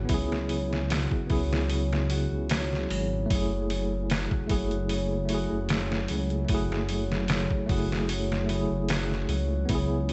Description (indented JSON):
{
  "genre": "trip hop",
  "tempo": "75 BPM",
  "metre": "4/4",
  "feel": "swing 53% on 16ths",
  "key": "F# minor",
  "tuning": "A4 = 440 Hz",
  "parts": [
    { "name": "tine electric piano", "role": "accompaniment", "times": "0.0-10.1 s", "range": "A3 to G#4", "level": "-34 LUFS", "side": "equal", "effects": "tremolo, tape echo" },
    { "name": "concert harp", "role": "arpeggios", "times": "0.0-10.1 s", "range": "C#3 to F#4", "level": "-35 LUFS", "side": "equal", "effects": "tape echo" },
    { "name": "dark detuned saw bass", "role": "bass", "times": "0.0-10.1 s", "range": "F#1 to C#2", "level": "-32 LUFS", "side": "equal", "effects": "none" },
    { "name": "trip hop sampler-style drum kit", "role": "drums", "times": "0.1-10.1 s", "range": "hi-hat, kick drum, snare drum", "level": "-32 LUFS", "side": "equal", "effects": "studio reverb" }
  ],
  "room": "little or no reverb",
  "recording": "vinyl crackle, nothing above 8.0 kHz",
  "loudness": "-28 LUFS",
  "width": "mono",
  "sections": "0.0-10.1 A section",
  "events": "none",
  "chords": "0.0 C#m7; 3.3 F#m9"
}